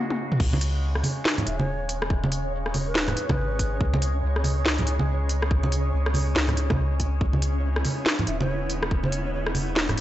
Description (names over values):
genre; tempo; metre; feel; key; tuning
deep dubstep; 141 BPM; 4/4; swing 61% on 16ths, half-time; C# minor; A4 = 439 Hz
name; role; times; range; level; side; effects
overtone-sweeping drone; sustained chords; 0.0-10.0 s; C#3 to G#4; -34 LUFS; equal; chorus, built-in reverb
garage drum kit; drums; 0.1-10.0 s; crash cymbal, hi-hat, rim click, snare drum, toms; -27 LUFS; equal; none
soft dub sub bass; bass; 0.4-10.0 s; D#1 to C#2; -26 LUFS; equal; none
electronic kick drum; drums; 0.4-9.0 s; none; -26 LUFS; equal; none
flickering grainy texture; texture; 0.6-10.0 s; C#4 to C#5; -34 LUFS; right 1 dB; built-in reverb
congas; percussion; 0.5-10.0 s; none; -28 LUFS; right 2 dB; none
breathy reedy ney; melody; 1.5-3.9, 8.3-9.4 s; B4 to E5; -36 LUFS; equal; dub echo
room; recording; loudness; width
little or no reverb; dry, gritty hardware recording, transformer saturation, nothing above 8.0 kHz; -22 LUFS; side -13 dB against mid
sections
0.4-10.0 A section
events
break 0.0-0.4; drum fill 0.0-0.4; drop 0.4-10.0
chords
0.4 C#5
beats
| 0.40 0.83 1.25 1.68 | 2.10 2.53 2.95 3.38 | 3.81 4.23 4.66 5.08 | 5.51 5.93 6.36 6.78 | 7.21 7.63 8.06 8.49 | 8.91 9.34 9.76